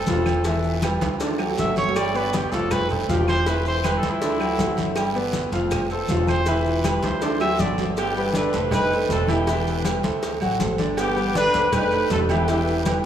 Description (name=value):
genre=latin, salsa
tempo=160 BPM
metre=4/4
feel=straight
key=G major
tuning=A4 = 440 Hz
part: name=clear trumpet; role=melody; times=0.0-7.9 s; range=Eb4 to E5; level=-28 LUFS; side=equal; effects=none
part: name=clear grand piano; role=accompaniment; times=0.0-13.0 s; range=D3 to G5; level=-24 LUFS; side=equal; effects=none
part: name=upright bass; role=bass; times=0.0-13.0 s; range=E1 to D2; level=-27 LUFS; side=equal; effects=none
part: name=congas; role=percussion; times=0.1-13.0 s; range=none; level=-30 LUFS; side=left 2 dB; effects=none
part: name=cowbell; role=percussion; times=0.1-13.0 s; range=none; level=-33 LUFS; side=left 1 dB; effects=none
part: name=guiro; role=percussion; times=0.1-13.0 s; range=none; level=-39 LUFS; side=right 8 dB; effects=none
part: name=maracas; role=percussion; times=0.1-13.0 s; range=none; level=-41 LUFS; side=left 5 dB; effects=none
part: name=timbales and agogo bells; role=percussion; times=0.1-13.0 s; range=none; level=-30 LUFS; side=right 7 dB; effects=none
part: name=claves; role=percussion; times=0.3-7.6 s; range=none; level=-43 LUFS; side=left 6 dB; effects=none
part: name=warm horn section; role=melody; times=8.0-13.0 s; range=B3 to B4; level=-23 LUFS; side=equal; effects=none
room=wet cathedral reverb, RT60 5.4 s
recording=in a vast, echoing space, studio reverb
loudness=-19 LUFS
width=side -9 dB against mid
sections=0.0-8.0 A section; 8.0-13.1 B section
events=trumpet solo 0.0-8.0; drum fill 1.0-2.0, 7.0-8.0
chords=0.5 Em7; 1.2 D; 2.0 G; 2.7 F; 3.5 Em7; 4.2 D; 5.0 G; 5.7 F; 6.5 Em7; 7.2 D; 8.0 G; 8.7 F7; 9.5 Em7; 10.2 D7; 11.0 G; 11.7 F7; 12.5 Em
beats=0.07 | 0.45 0.83 1.20 1.58 | 1.96 2.33 2.71 3.08 | 3.46 3.84 4.21 4.59 | 4.97 5.34 5.72 6.09 | 6.47 6.85 7.22 7.60 | 7.97 8.35 8.73 9.10 | 9.48 9.85 10.23 10.61 | 10.98 11.36 11.73 12.11 | 12.48 12.86